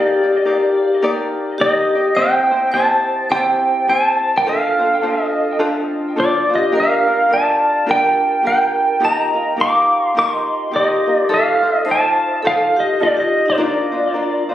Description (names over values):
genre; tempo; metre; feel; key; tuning
Hawaiian; 105 BPM; 4/4; swing 60% on 8ths; unclear; A4 = 440 Hz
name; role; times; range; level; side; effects
pedal steel guitar; melody; 0.0-14.5 s; C5 to D6; -16 LUFS; equal; ping-pong delay
vibraphone with medium mallets; second line; 0.0-14.5 s; Eb4 to F5; -20 LUFS; equal; none
ukulele; accompaniment; 0.0-14.5 s; C4 to D5; -22 LUFS; left 1 dB; none
room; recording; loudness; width
light reverb; recorded on a phone in the room, studio reverb, compression; -14 LUFS; side -12 dB against mid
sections
0.0-14.5 A section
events
none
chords
0.0 Ebmaj7; 2.2 C; 4.4 F6; 6.7 Gm7; 9.0 Ebadd9; 11.3 F7; 13.6 Bbadd9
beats
0.45 1.02 1.59 | 2.16 2.73 3.30 3.87 | 4.44 5.01 5.58 6.15 | 6.72 7.29 7.86 8.43 | 9.00 9.57 10.14 10.71 | 11.29 11.86 12.43 13.00 | 13.57 14.14